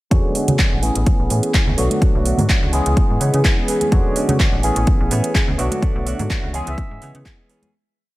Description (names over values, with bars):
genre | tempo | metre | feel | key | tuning
filtered disco house | 126 BPM | 4/4 | swing 54% on 16ths | unclear | A4 = 440 Hz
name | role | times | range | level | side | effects
barky tine electric piano | accompaniment | 0.1-7.7 s | D3 to C#5 | -22 LUFS | equal | phaser, vintage 12-bit sampler grit, sidechain pumping, low-pass filter
direct-recorded clean electric guitar | riff | 0.1-7.7 s | E3 to G#4 | -27 LUFS | right 3 dB | sidechain pumping, low-pass filter
slap-like FM bass | bass | 0.1-7.2 s | A1 to C#3 | -20 LUFS | equal | sidechain pumping, low-pass filter
electronic kick drum | drums | 0.1-7.4 s | none | -17 LUFS | equal | studio reverb
house drum kit | drums | 0.1-7.7 s | handclaps, hi-hat | -24 LUFS | right 1 dB | sidechain pumping on hats, studio reverb
egg shaker and congas | percussion | 0.1-7.7 s | none | -25 LUFS | right 2 dB | sidechain pumping on perc, low-pass filter on perc
bright reedy silver concert flute | melody | 6.7-7.1 s | E5 | -36 LUFS | equal | sidechain pumping, low-pass filter
room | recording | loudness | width
digital ambience | none | -15 LUFS | side -18 dB against mid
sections
0.1-7.7 groove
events
filter sweep 0.1-7.7; fade-out 5.2-7.7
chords
0.1 E13; 0.8 Amaj9; 1.8 Bm7; 2.7 C#m7; 3.9 E13; 4.6 Amaj9; 5.6 Bm7; 6.5 C#m7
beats
| 0.12 0.59 1.07 1.54 | 2.02 2.50 2.97 3.45 | 3.92 4.40 4.88 5.35 | 5.83 6.31 6.78 7.26